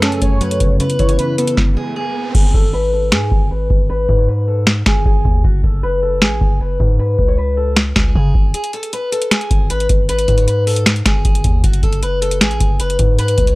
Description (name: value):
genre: hip hop, trap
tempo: 155 BPM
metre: 4/4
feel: half-time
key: G# phrygian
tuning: A4 = 440 Hz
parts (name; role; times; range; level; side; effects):
- picked steel-string acoustic guitar; melody; 0.0-13.6 s; F#4 to C#5; -20 LUFS; left 2 dB; low-pass filter
- warm velvety synth lead; second line; 0.0-1.5 s; A4 to C#5; -23 LUFS; right 2 dB; chorus, analog delay
- soft electric-piano-like synth keys; accompaniment; 0.0-2.3 s; F#2 to C#4; -20 LUFS; right 1 dB; chorus
- sweeping resonant pad; sustained chords; 0.0-1.6 s; F#2 to E4; -25 LUFS; equal; lush chorus
- booming analog drum machine; drums; 0.0-13.6 s; crash cymbal, finger snaps, hi-hat, kick drum, snare drum; -14 LUFS; equal; none
- riser; sound effects; 1.3-2.3 s; none; -32 LUFS; right 2 dB; none
- long sustained 808-style bass; bass; 2.3-13.6 s; F#1 to C#3; -18 LUFS; equal; none
room: little or no reverb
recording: dry, gritty hardware recording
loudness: -13 LUFS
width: side -21 dB against mid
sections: 0.0-2.3 A section; 2.3-13.6 B section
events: riser 1.3-2.3; stop 1.6-2.3; hi-hats muted 2.3-8.5; filter sweep on steel-string acoustic guitar 2.3-8.5; break 8.5-9.3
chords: 0.0 F#m; 0.8 C#m7; 2.3 G#5; 5.4 F#m; 7.0 C#5; 8.5 G#5; 11.6 F#m